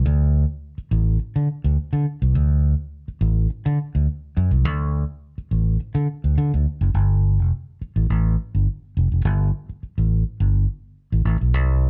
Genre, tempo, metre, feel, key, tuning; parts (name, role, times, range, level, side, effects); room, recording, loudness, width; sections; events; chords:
funk; 104 BPM; 4/4; straight; A4 = 436 Hz
fingered electric bass; solo; 0.0-11.9 s; F1 to D3; -21 LUFS; equal
moderate club reverb, RT60 0.7 s; -22 LUFS; mono
0.0-6.9 A section; 6.9-11.9 B section